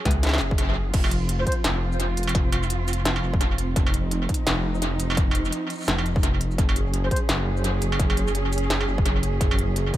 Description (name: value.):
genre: half-time drum and bass.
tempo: 170 BPM.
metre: 4/4.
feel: swing 59% on 16ths, half-time.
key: F phrygian.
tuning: A4 = 440 Hz.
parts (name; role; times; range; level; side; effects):
warm symphonic cello section; sustained chords; 0.0-10.0 s; F3 to Ab4; -30 LUFS; right 2 dB; sidechain pumping.
dark detuned saw bass; bass; 0.1-9.9 s; F1 to Db2; -25 LUFS; equal; none.
electronic kick drum; drums; 0.1-10.0 s; none; -23 LUFS; equal; distortion.
industrial drum kit; drums; 0.1-10.0 s; crash cymbal, hi-hat, shaker, snare drum, struck metal; -27 LUFS; equal; tape echo.
silver concert flute; melody; 1.4-1.5, 7.0-7.2 s; C5; -33 LUFS; equal; dub echo.
room: little or no reverb.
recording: echo-heavy mix.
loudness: -21 LUFS.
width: side -14 dB against mid.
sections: 0.0-10.0 A section.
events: none.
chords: 0.0 Gbsus2; 0.9 F5; 6.6 Gbsus2.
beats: 0.23 0.58 | 0.94 1.29 1.64 2.00 | 2.35 2.70 3.05 3.41 | 3.76 4.11 4.47 4.82 | 5.17 5.53 5.88 6.23 | 6.58 6.94 7.29 7.64 | 8.00 8.35 8.70 9.05 | 9.41 9.76.